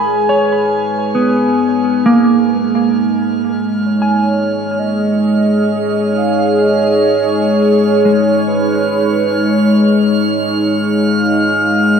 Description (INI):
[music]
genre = ambient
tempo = 65 BPM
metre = 4/4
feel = straight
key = G# dorian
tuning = A4 = 444 Hz
[part]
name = warm velvety synth lead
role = melody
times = 0.0-9.8 s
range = B4 to E#5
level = -22 LUFS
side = right 2 dB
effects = chorus, shimmer reverb, tape echo
[part]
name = warm analog pad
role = sustained chords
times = 0.0-12.0 s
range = G#3 to G#5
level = -13 LUFS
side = equal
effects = chorus, shimmer reverb
[part]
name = mellow electric guitar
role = arpeggios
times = 0.0-11.9 s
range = G#3 to B5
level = -16 LUFS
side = right 1 dB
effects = analog chorus, shimmer reverb, tape echo
[part]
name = drifting glass-harmonics texture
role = texture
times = 0.0-12.0 s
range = E#6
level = -23 LUFS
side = right 1 dB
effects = chorus, built-in reverb, shimmer reverb
[sound]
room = wet concert hall reverb, RT60 1.9 s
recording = none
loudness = -11 LUFS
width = side -6 dB against mid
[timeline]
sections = 0.0-12.0 A section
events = fade-in on synth texture 0.0-12.0; fade-in on soft synth lead 0.0-12.0; fade-out on clean electric guitar 0.0-12.0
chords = 0.0 G#m; 10.3 D#madd9/G#